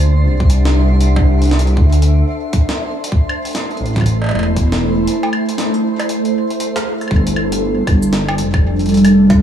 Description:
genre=IDM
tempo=118 BPM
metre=4/4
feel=swing 62% on 16ths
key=unclear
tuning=A4 = 440 Hz
part: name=glassy FM pad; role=sustained chords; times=0.0-9.4 s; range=G3 to F#5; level=-17 LUFS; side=equal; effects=ensemble chorus, built-in reverb, phaser
part: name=dark detuned saw bass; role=bass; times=0.0-9.4 s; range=E1 to D2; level=-13 LUFS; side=equal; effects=none
part: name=twinkling granular texture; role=texture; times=0.0-7.1 s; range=C5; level=-30 LUFS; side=right 3 dB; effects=built-in reverb
part: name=electronic kick drum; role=drums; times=0.4-9.4 s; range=none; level=-15 LUFS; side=equal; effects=none
part: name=jungle sampler-style drum kit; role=drums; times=0.5-9.4 s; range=cowbell, hi-hat, shaker, snare drum, woodblock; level=-23 LUFS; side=equal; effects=overdrive, digital delay
room=light reverb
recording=none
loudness=-12 LUFS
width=side -10 dB against mid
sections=0.0-7.1 A section; 7.1-9.4 B section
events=none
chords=0.0 D7; 3.0 Am; 7.1 Gm

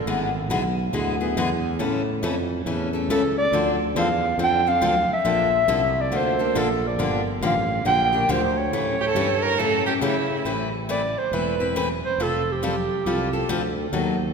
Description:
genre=acoustic string swing (jazz manouche)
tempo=139 BPM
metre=4/4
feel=swing 64% on 8ths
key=A minor from 10.5 s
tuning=A4 = 440 Hz
part: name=sustaining fretless electric bass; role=bass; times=0.0-14.3 s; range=E1 to C#3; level=-27 LUFS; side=right 1 dB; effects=none
part: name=picked steel-string acoustic guitar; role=accompaniment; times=0.1-14.2 s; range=C#3 to B4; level=-25 LUFS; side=left 4 dB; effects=none
part: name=breathy clarinet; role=melody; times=3.1-13.8 s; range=G4 to G5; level=-23 LUFS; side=right 1 dB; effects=none
part: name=warm violin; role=second line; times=9.0-10.4 s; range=E4 to Bb4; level=-25 LUFS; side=right 4 dB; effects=none
room=wet church reverb, RT60 2.9 s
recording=recorded in a church or concert hall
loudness=-20 LUFS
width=side -5 dB against mid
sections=0.0-10.5 A section; 10.5-14.3 B section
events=none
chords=0.1 E7/G#; 1.8 A; 3.5 Dm7; 5.3 Bbmaj7; 7.0 Gm7; 8.7 A7; 10.5 Amadd9; 12.2 Fadd9

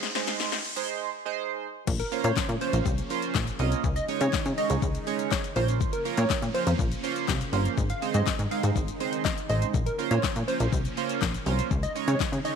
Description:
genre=dance-pop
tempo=122 BPM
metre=4/4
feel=straight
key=Bb minor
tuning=A4 = 440 Hz
part: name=chorused retro synth keys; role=accompaniment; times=0.0-12.6 s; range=Ab3 to Eb5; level=-31 LUFS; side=right 14 dB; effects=sidechain pumping
part: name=deep house drum kit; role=drums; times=0.0-12.6 s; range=crash cymbal, handclaps, hi-hat, kick drum, shaker, snare drum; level=-30 LUFS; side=left 4 dB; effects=none
part: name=riser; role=sound effects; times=0.0-0.9 s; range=none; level=-35 LUFS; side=right 1 dB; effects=none
part: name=supersaw pad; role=sustained chords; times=2.1-12.6 s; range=Db3 to Eb4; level=-36 LUFS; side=left 1 dB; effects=phaser, sidechain pumping
part: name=plucky analog bass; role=bass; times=1.9-12.4 s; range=G1 to Db3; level=-27 LUFS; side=equal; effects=sidechain pumping
part: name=plucky unison lead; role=melody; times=2.0-12.5 s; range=Bb4 to F5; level=-32 LUFS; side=equal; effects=sidechain pumping, slapback echo
room=light reverb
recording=1960s-style stereo, high-pass filter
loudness=-25 LUFS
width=side -7 dB against mid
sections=0.0-1.9 A section; 1.9-12.6 B section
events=build-up 0.0-1.9; drum fill 0.0-0.9; riser 0.0-1.9; break 0.9-1.9; drop 1.9-12.6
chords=0.0 Ab; 1.9 Bbmadd9; 3.8 Dbsus2; 5.6 Bbmadd9; 7.8 Ab; 9.7 Bbmadd9; 11.7 Dbsus2

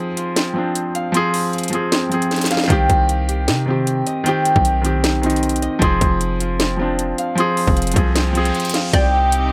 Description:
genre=hip hop, trap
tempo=154 BPM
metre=4/4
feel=half-time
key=unclear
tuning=A4 = 441 Hz
part: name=felt-muted upright piano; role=accompaniment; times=0.0-9.0 s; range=Eb3 to Ab4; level=-23 LUFS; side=equal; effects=low-pass filter
part: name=Celtic harp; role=arpeggios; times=0.0-9.5 s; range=F3 to C6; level=-24 LUFS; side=equal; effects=low-pass filter, tape echo
part: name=trap drum kit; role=drums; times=0.2-9.4 s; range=hi-hat, kick drum, snare drum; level=-22 LUFS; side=equal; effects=overdrive
part: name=warm 808-style bass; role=bass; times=2.7-9.5 s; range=F1 to C3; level=-23 LUFS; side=equal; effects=none
part: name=riser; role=sound effects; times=8.1-8.9 s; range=none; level=-32 LUFS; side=equal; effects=none
part: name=hollow square pluck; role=second line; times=8.9-9.3 s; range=D5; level=-25 LUFS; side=equal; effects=chorus
part: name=warm studio string section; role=sustained chords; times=8.9-9.5 s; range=C3 to G4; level=-26 LUFS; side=equal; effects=none
room=light reverb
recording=none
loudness=-18 LUFS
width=mono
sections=0.0-8.9 A section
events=break 0.0-2.7; drum fill 2.3-2.7; riser 8.1-8.9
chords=0.0 Fm; 2.7 Cm; 5.8 Fm; 8.9 Cm

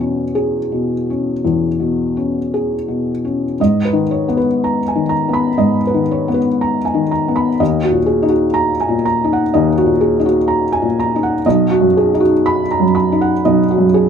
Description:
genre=neoclassical minimalist piano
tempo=55-63 BPM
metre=4/4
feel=rubato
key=G# minor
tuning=A4 = 440 Hz
part: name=felt-muted upright piano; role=solo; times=0.0-14.1 s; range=B1 to B5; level=-13 LUFS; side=equal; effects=none
room=light reverb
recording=minimal, uncompressed stereo recording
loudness=-13 LUFS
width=side -7 dB against mid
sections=0.0-3.6 A section; 3.6-14.1 A section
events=none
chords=0.0 E6; 3.6 G#madd9; 7.6 D#m; 11.4 B

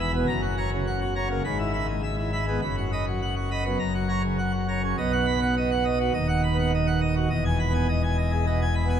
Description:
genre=classical, organ toccata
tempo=103 BPM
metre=4/4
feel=straight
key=B major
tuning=A4 = 440 Hz
part: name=pipe organ, plenum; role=solo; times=0.0-9.0 s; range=D#1 to B5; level=-23 LUFS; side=equal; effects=none
room=wet cathedral reverb, RT60 5.0 s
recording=in a vast, echoing space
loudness=-23 LUFS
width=side -9 dB against mid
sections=0.0-5.0 A section; 5.0-9.0 B section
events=none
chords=0.3 F#; 1.4 E/G#; 2.6 B/F#; 3.8 F#; 5.0 B; 6.2 B/D#; 7.3 Emaj7

